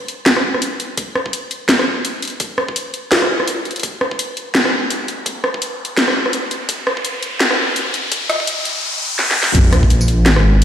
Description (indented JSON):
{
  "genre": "half-time drum and bass",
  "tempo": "168 BPM",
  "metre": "4/4",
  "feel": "swing 58% on 16ths, half-time",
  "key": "unclear",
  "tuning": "A4 = 436 Hz",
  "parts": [
    { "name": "drum and bass drum kit", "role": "drums", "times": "0.1-10.6 s", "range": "hi-hat, rim click, snare drum, tambourine", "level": "-16 LUFS", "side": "equal", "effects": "none" },
    { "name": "electronic kick drum", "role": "drums", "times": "1.0-9.9 s", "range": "none", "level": "-19 LUFS", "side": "equal", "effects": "high-pass filter on kick, high-pass filter on room" },
    { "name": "riser and sub drop", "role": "sound effects", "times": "5.5-10.6 s", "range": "none", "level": "-22 LUFS", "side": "equal", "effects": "none" },
    { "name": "dark detuned saw bass", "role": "bass", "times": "9.5-10.6 s", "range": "Ab1 to Bb1", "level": "-12 LUFS", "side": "equal", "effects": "none" }
  ],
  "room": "wet lush hall reverb, RT60 2.1 s",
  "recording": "played on a big sound system in a bare room, stone room reverb, high-pass filter",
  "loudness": "-15 LUFS",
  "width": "side -9 dB against mid",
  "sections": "0.0-9.5 A section; 9.5-10.6 B section",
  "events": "build-up 0.0-9.5; filter sweep 0.0-9.5; riser 5.5-9.5; drum fill 9.2-9.5; drop 9.5-10.6; impact 9.5-10.6",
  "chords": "none"
}